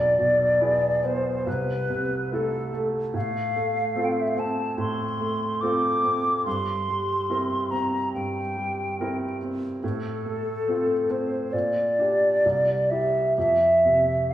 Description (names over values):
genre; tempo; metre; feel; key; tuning
classical, romantic duo for flute and grand piano; 63-74 BPM; 4/4; rubato; F major from 3.2 s; A4 = 440 Hz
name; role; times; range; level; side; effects
hollow concert flute; melody; 0.0-14.3 s; A4 to D6; -23 LUFS; equal; none
clear baby grand piano; accompaniment; 0.0-14.3 s; B1 to Bb4; -27 LUFS; right 2 dB; none
room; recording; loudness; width
wet stone room reverb, RT60 1.3 s; heard from further back in the room; -22 LUFS; side -12 dB against mid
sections
0.0-14.3 A section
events
none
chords
0.0 E7/B; 1.5 Am/C; 3.2 F/A; 6.5 C7/G; 9.8 F/A; 11.5 Gm/Bb; 12.4 C; 13.4 F5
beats
0.61 1.47 2.32 | 3.15 3.98 4.79 5.62 | 6.46 7.30 8.14 8.98 | 9.83 10.66 11.53 12.44 | 13.36 14.31